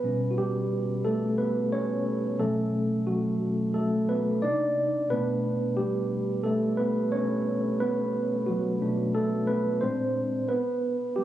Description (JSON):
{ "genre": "R&B", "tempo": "89 BPM", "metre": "4/4", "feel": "swing 64% on 16ths", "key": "B minor", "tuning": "A4 = 439 Hz", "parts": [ { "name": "tine electric piano", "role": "solo", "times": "0.0-11.2 s", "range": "A#2 to D5", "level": "-25 LUFS", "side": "equal", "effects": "medium stereo tremolo" } ], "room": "moderate plate reverb, RT60 2.4 s", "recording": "recorded on a phone in the room, studio reverb", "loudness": "-25 LUFS", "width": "side -12 dB against mid", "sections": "0.0-11.2 A section", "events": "tine electric piano solo 0.0-11.2", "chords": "0.0 A9/B; 2.4 F#madd11/B; 4.4 Cm9; 5.1 Bm9; 9.8 A#9; 10.5 A7sus2/B (rootless)" }